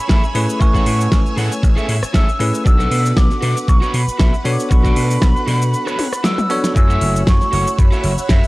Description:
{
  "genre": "nu-disco, nu disco",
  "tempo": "117 BPM",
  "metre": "4/4",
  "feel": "swing 54% on 16ths",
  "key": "unclear",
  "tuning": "A4 = 440 Hz",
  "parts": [
    { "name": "breathy mellow jazz flute", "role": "melody", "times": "0.0-8.5 s", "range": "B5 to E6", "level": "-23 LUFS", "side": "equal", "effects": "none" },
    { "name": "string machine, full ensemble", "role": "sustained chords", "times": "0.0-8.5 s", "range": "B4 to E6", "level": "-29 LUFS", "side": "equal", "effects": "phaser, ensemble chorus, sidechain pumping" },
    { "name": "electric guitar at the edge of break-up", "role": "riff", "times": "0.1-8.4 s", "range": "F#4 to F#5", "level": "-27 LUFS", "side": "right 1 dB", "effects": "wide subtle chorus" },
    { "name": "vintage slap bass", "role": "bass", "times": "0.1-8.4 s", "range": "F#1 to B2", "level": "-19 LUFS", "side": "equal", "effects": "none" },
    { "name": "electronic kick drum", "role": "drums", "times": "0.1-8.4 s", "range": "none", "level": "-14 LUFS", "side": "equal", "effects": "none" },
    { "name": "pop drum kit", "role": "drums", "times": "0.1-8.5 s", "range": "hi-hat, rim click, shaker, snare drum, toms", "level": "-23 LUFS", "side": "equal", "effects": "none" },
    { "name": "bell-like tine electric piano", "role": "accompaniment", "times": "0.3-8.0 s", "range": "A3 to C#6", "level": "-23 LUFS", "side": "equal", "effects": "medium stereo tremolo, sidechain pumping" }
  ],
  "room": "digital ambience",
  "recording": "dry, gritty hardware recording, cassette tape",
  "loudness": "-13 LUFS",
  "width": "side -20 dB against mid",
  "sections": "0.0-8.5 A section",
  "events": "break 5.7-6.8; drum fill 6.0-6.8",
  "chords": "0.0 Amaj7; 2.7 Bm7; 6.8 F#m7"
}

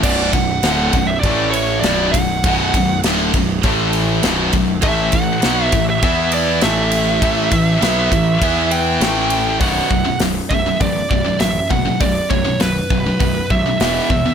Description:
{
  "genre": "heavy metal",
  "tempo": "100 BPM",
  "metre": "4/4",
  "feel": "straight",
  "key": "B minor",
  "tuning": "A4 = 440 Hz",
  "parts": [
    { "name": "high-gain lead guitar", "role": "melody", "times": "0.0-14.3 s", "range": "B4 to G5", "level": "-20 LUFS", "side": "right 4 dB", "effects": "distortion, ping-pong delay" },
    { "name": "heavy high-gain guitar", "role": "riff", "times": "0.0-14.3 s", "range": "B1 to E4", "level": "-18 LUFS", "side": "left 1 dB", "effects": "distortion" },
    { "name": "fuzz picked electric bass", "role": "bass", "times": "0.0-14.3 s", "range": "B0 to E2", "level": "-22 LUFS", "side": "equal", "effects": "overdrive" },
    { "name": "modern studio drum kit", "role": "drums", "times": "0.0-14.2 s", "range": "crash cymbal, hi-hat, kick drum, ride cymbal, snare drum", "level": "-20 LUFS", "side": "equal", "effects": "none" }
  ],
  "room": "light reverb",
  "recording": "none",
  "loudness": "-14 LUFS",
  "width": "side -7 dB against mid",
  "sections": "0.0-9.6 A section; 9.6-14.3 B section",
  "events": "none",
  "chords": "0.0 Bm; 1.2 A5; 1.8 Bm; 3.6 A5; 4.2 B5; 4.8 A5; 6.0 E5; 6.6 A5; 8.4 E5; 9.0 A5; 9.6 B5; 13.8 E5"
}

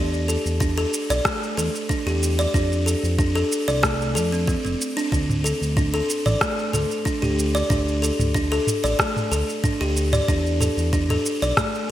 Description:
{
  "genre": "organic downtempo",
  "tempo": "93 BPM",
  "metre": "4/4",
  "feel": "straight",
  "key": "D minor",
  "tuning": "A4 = 438 Hz",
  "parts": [
    { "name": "buzzing kalimba", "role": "arpeggios", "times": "0.0-11.9 s", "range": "A3 to D5", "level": "-23 LUFS", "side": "equal", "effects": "digital delay" },
    { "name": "smooth gliding synth bass", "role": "bass", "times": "0.0-11.5 s", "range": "F1 to F2", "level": "-24 LUFS", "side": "equal", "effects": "none" },
    { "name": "organic electronic drum kit", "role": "drums", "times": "0.1-11.9 s", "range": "rim click, shaker, toms", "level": "-26 LUFS", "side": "equal", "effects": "gated reverb" },
    { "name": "electronic kick drum", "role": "drums", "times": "0.6-11.7 s", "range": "none", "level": "-24 LUFS", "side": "equal", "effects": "none" }
  ],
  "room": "moderate lush hall reverb, RT60 1.9 s, digital ambience",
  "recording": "bright 1980s-style digital production",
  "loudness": "-19 LUFS",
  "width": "side -13 dB against mid",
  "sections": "0.0-11.9 A section",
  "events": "none",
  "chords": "0.0 Em7; 2.5 F; 5.1 D5; 10.3 E7(no3)"
}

